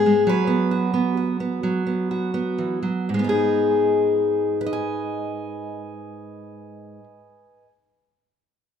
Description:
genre	folk, solo fingerstyle acoustic guitar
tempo	39-46 BPM (dotted quarters)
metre	6/8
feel	straight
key	G# minor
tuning	A4 = 439 Hz
part	fingerpicked steel-string acoustic guitar	solo	0.0-7.7 s	G#2 to G#5	-20 LUFS	equal	none
room	moderate recital hall reverb, RT60 1.5 s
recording	minimal, uncompressed stereo recording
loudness	-20 LUFS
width	side -8 dB against mid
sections	0.0-3.1 A section; 3.1-6.1 B section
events	slowing down 0.0-3.1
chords	0.3 F#sus4; 3.1 G#m

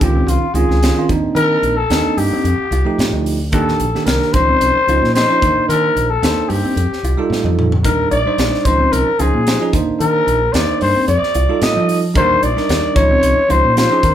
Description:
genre	electric jazz fusion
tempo	111 BPM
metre	4/4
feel	straight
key	unclear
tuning	A4 = 440 Hz
part	growling trumpet	melody	0.0-14.1 s	F4 to Eb5	-16 LUFS	left 2 dB	none
part	bell-like tine electric piano	accompaniment	0.0-14.1 s	Eb3 to Eb5	-20 LUFS	right 5 dB	none
part	fingered electric bass	bass	0.0-14.1 s	Bb1 to F3	-18 LUFS	equal	none
part	crisp fusion drum kit	drums	0.0-14.1 s	hi-hat, kick drum, snare drum, toms	-21 LUFS	equal	none
part	mellow electric guitar	stabs	0.2-14.1 s	C4 to F4	-26 LUFS	left 2 dB	none
room	light reverb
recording	band playing live in one room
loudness	-13 LUFS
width	side -10 dB against mid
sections	0.0-14.1 A section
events	drum fill 7.3-7.8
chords	0.0 Dbmaj9; 1.1 Cm9; 2.4 F9; 3.5 Ebmaj7; 4.3 Dbmaj9; 5.4 Cm9; 6.8 F9; 7.8 Ebmaj7; 8.7 Dbmaj9; 9.7 Cm9; 11.1 F9; 12.2 Ebmaj7; 13.0 Dbmaj9

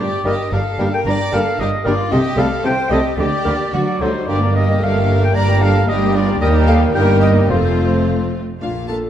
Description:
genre	quick classical-period movement for symphony orchestra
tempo	112 BPM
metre	2/4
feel	rubato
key	G minor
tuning	A4 = 440 Hz
part	clear studio violin section	melody	0.0-9.0 s	F4 to F5	-31 LUFS	left 4 dB	none
part	bright flute section	second line	0.0-8.1 s	C5 to Bb5	-26 LUFS	equal	none
part	rich chamber violin section	second line	0.0-9.0 s	Eb4 to A5	-25 LUFS	left 2 dB	none
part	warm oboe	second line	0.0-8.1 s	C5 to Bb5	-24 LUFS	equal	none
part	rich chamber viola section	accompaniment	0.0-9.0 s	F#3 to G4	-24 LUFS	right 1 dB	none
part	clear chamber double bass section	bass	0.0-9.1 s	F1 to Eb2	-19 LUFS	right 2 dB	none
part	clear studio cello section	bass	0.0-9.1 s	Eb2 to D3	-21 LUFS	right 2 dB	none
part	warm bassoon	accompaniment	0.2-8.3 s	F3 to Bb3	-27 LUFS	equal	none
part	warm clarinet	second line	0.3-9.1 s	F4 to Bb4	-25 LUFS	equal	none
part	mellow French horn section	sustained chords	0.3-8.3 s	A3 to G4	-24 LUFS	left 4 dB	none
room	wet scoring stage reverb, RT60 1.7 s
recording	dark, warm production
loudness	-14 LUFS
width	side -10 dB against mid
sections	0.0-8.6 A section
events	none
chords	0.0 Gm; 2.1 Cm6; 3.2 Gm; 3.7 D; 4.3 Gm; 6.4 Eb; 7.5 F

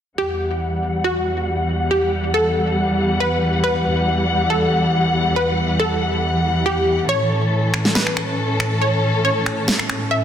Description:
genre	heavy wobble dubstep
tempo	139 BPM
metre	4/4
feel	half-time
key	E dorian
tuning	A4 = 439 Hz
part	wide unison pluck	melody	0.2-10.2 s	F#4 to E5	-22 LUFS	equal	tape echo
part	dark studio string section	sustained chords	0.2-10.2 s	E2 to F#5	-19 LUFS	equal	low-pass filter
part	electronic finger snaps and snare drum	drums	7.7-10.0 s	none	-20 LUFS	equal	none
room	moderate lush hall reverb, RT60 1.7 s, small room reverb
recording	dense, heavily limited modern master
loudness	-17 LUFS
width	side -9 dB against mid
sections	0.2-10.2 A section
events	none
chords	0.2 Emadd9; 7.1 A

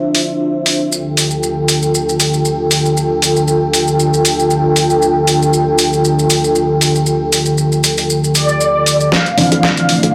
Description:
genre	deep house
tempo	117 BPM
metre	4/4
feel	swing 55% on 16ths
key	unclear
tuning	A4 = 443 Hz
part	dark analog pad	sustained chords	0.0-10.1 s	D3 to G5	-16 LUFS	equal	chorus, sidechain pumping
part	dusty soul sampler-style drum kit	drums	0.1-10.1 s	hi-hat, snare drum	-18 LUFS	equal	none
part	maracas	percussion	0.9-9.1 s	none	-22 LUFS	equal	none
part	mellow horn-like synth lead	melody	8.4-10.1 s	D5 to F5	-18 LUFS	equal	ensemble chorus
part	woody FM bass	bass	9.1-10.1 s	D2	-24 LUFS	equal	sidechain pumping, high-pass filter
part	electronic kick drum	drums	9.1-9.7 s	none	-26 LUFS	equal	overdrive, high-pass filter on kick
part	felt-muted upright piano	stabs	9.4-10.1 s	D3 to C4	-16 LUFS	equal	sidechain pumping
room	moderate plate reverb, RT60 2.0 s, digital ambience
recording	dry, gritty hardware recording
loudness	-14 LUFS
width	mono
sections	0.0-9.1 A section; 9.1-10.1 B section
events	build-up 9.1-10.1; drum fill 9.1-10.1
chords	0.0 Dm9; 0.9 Fadd9/D; 9.1 Dm9

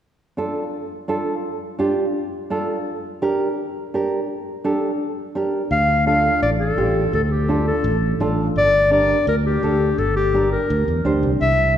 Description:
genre	latin, cumbia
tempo	169 BPM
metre	4/4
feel	straight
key	D minor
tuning	A4 = 440 Hz
part	nylon-string guitar	accompaniment	0.4-11.3 s	D4 to C5	-22 LUFS	right 2 dB	none
part	warm clarinet	melody	5.7-11.7 s	G4 to F5	-19 LUFS	left 2 dB	none
part	modern bright fingered electric bass	bass	5.7-11.8 s	G1 to E2	-21 LUFS	equal	none
room	wet concert hall reverb, RT60 2.3 s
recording	recorded in a church or concert hall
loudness	-18 LUFS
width	side -10 dB against mid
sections	0.0-5.7 A section; 5.7-11.8 B section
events	none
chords	0.0 Dm; 2.9 Gm; 5.7 Dm; 8.6 Gm

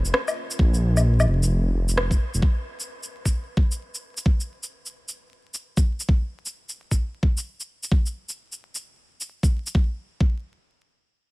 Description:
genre	future garage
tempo	131 BPM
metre	4/4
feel	swing 62% on 16ths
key	unclear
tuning	A4 = 440 Hz
part	dark detuned saw bass	bass	0.0-2.4 s	F1 to Bb1	-20 LUFS	equal	tube saturation, sidechain pumping
part	electronic shaker, rim click and woodblock	drums	0.1-9.7 s	none	-27 LUFS	equal	overdrive, studio ambience
part	electronic kick drum	drums	0.6-10.4 s	none	-20 LUFS	equal	overdrive, studio ambience
room	digital ambience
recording	vinyl crackle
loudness	-21 LUFS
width	side -22 dB against mid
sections	0.0-9.7 A section; 9.7-11.3 B section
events	none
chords	none

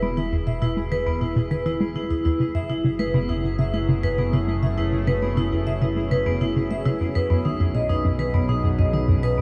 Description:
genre	ambient, sequencer-driven space music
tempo	101 BPM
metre	4/4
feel	straight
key	unclear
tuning	A4 = 438 Hz
part	sweeping resonant pad	sustained chords	0.0-9.4 s	B2 to G#4	-36 LUFS	equal	chorus
part	vibraphone with medium hard mallets	arpeggios	0.0-9.4 s	B3 to E5	-28 LUFS	equal	delay
part	hollow square pluck	riff	0.0-9.4 s	E2 to A3	-26 LUFS	equal	chorus, vintage 12-bit sampler grit, delay
part	fat analog bass	bass	0.0-9.4 s	E1 to B1	-31 LUFS	equal	none
part	pulsing gated texture	texture	0.0-9.4 s	G#4	-40 LUFS	equal	chorus, built-in reverb
room	moderate huge ambient reverb, RT60 7.9 s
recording	none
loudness	-23 LUFS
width	mono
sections	0.0-9.4 A section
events	fade-in on analog synth pad 0.0-9.4; filter sweep on synth arpeggio sound 0.0-9.4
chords	0.0 E; 2.4 F#m; 7.2 B7

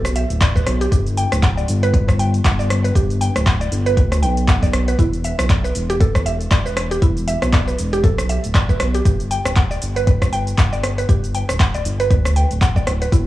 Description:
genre	afro house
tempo	118 BPM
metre	4/4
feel	swing 57% on 16ths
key	unclear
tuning	A4 = 441 Hz
part	mallet-like synth pluck	arpeggios	0.0-13.3 s	E4 to G5	-23 LUFS	right 1 dB	chorus, sidechain pumping, analog delay
part	smooth synth bass	bass	0.0-13.3 s	D1 to D2	-20 LUFS	equal	transformer saturation, sidechain pumping
part	afro-pop drum kit	drums	0.0-13.2 s	handclaps, hi-hat, rim click, shaker	-24 LUFS	equal	small room ambience
part	electronic kick drum	drums	0.4-13.2 s	none	-16 LUFS	equal	small room ambience
room	little or no reverb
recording	dry, gritty hardware recording, cassette tape, small room ambience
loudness	-15 LUFS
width	side -15 dB against mid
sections	0.0-13.3 A section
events	none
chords	0.0 E7(no3); 0.9 G; 5.0 E7(no3); 9.1 G

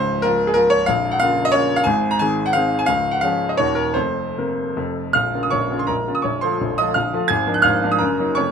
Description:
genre	classical, romantic triple-time dance for piano with dotted rhythms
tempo	140-196 BPM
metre	3/4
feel	rubato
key	Bb minor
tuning	A4 = 445 Hz
part	clear grand piano	solo	0.0-8.5 s	Bb0 to Ab6	-17 LUFS	equal	none
room	light reverb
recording	close, detailed microphones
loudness	-17 LUFS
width	side -7 dB against mid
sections	0.0-5.1 A section; 5.1-8.5 B section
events	none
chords	0.0 Bbm/Db; 0.9 Bbm; 1.9 Ab; 2.9 Db; 3.6 Ebm; 4.0 Fsus4; 4.8 F; 5.1 Bbm; 6.2 F/Bb; 7.3 Bb7/Ab; 8.0 Ebm/Gb

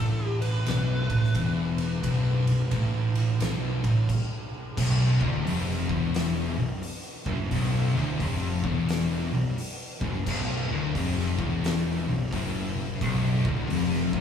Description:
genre	stoner and doom metal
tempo	88 BPM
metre	4/4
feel	swing 63% on 8ths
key	B minor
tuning	A4 = 445 Hz
part	fuzz lead guitar	melody	0.0-4.0 s	A4 to B4	-37 LUFS	right 1 dB	wah, distortion
part	thick fuzz guitar	riff	0.0-14.2 s	B1 to A2	-29 LUFS	left 6 dB	distortion
part	thick fuzz guitar	riff	0.0-14.2 s	B1 to A2	-30 LUFS	right 4 dB	distortion
part	fuzz picked electric bass	bass	0.0-14.2 s	B0 to A1	-32 LUFS	left 1 dB	overdrive
part	oversized low-tuned drum kit	drums	0.4-14.2 s	crash cymbal, hi-hat, kick drum, ride cymbal, snare drum	-32 LUFS	equal	none
part	fuzz guitar	riff	4.8-14.2 s	B1 to F#2	-31 LUFS	right 1 dB	distortion
room	moderate studio reverb, RT60 0.6 s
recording	band playing live in one room, small room reverb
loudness	-24 LUFS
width	side -8 dB against mid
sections	0.0-4.8 A section; 4.8-14.2 B section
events	stop 4.1-4.8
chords	0.0 N.C.; 4.8 Bm

